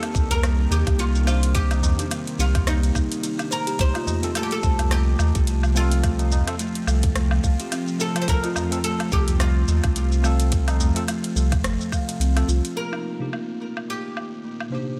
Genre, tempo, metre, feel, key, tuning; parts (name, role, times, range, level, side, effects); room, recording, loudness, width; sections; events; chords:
organic downtempo; 107 BPM; 4/4; swing 57% on 16ths; C dorian; A4 = 441 Hz
oud; melody; 0.0-15.0 s; Eb4 to C5; -32 LUFS; equal; delay, shimmer reverb
bowed-like drone; sustained chords; 0.0-15.0 s; Bb2 to G4; -36 LUFS; equal; built-in reverb, sidechain pumping, shimmer reverb
buzzing kalimba; arpeggios; 0.0-14.8 s; A3 to F5; -32 LUFS; equal; low-pass filter, digital delay, shimmer reverb
afro-pop drum kit; drums; 0.0-14.7 s; hi-hat, rim click, shaker, woodblock; -32 LUFS; equal; studio reverb
warm sub bass; bass; 0.1-12.6 s; G1 to Eb2; -23 LUFS; equal; sidechain pumping
electronic kick drum; drums; 0.1-12.1 s; -25 LUFS; equal; studio reverb
tabla; percussion; 0.1-12.2 s; -33 LUFS; equal
tine electric piano; accompaniment; 1.2-15.0 s; C3 to C5; -35 LUFS; equal; sidechain pumping, digital delay, shimmer reverb
light reverb; -22 LUFS; mono
0.0-12.8 A section; 12.8-15.0 B section
filter sweep on synth drone 12.8-15.0
0.0 Cm7; 3.8 F/C; 12.8 Cm7